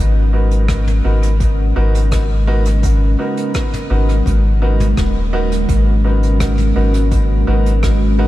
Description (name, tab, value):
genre	ambient dub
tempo	84 BPM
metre	4/4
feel	straight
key	G# minor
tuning	A4 = 441 Hz
part	deep dark ambient pad	sustained chords	0.0-8.3 s	G#3 to A#4	-21 LUFS	right 2 dB	chorus, built-in reverb
part	soft dub sub bass	bass	0.0-8.3 s	D#1 to G#1	-14 LUFS	equal	tube saturation
part	clear upright piano	stabs	0.3-8.3 s	B3 to A#4	-23 LUFS	right 2 dB	dub echo
part	vintage brush drum kit	drums	0.5-8.0 s	hi-hat, rim click, toms	-29 LUFS	equal	dub echo
part	electronic kick drum	drums	0.7-8.0 s	none	-19 LUFS	equal	none
room	light reverb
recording	none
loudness	-12 LUFS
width	side -15 dB against mid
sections	0.0-8.3 A section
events	none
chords	0.0 G#m7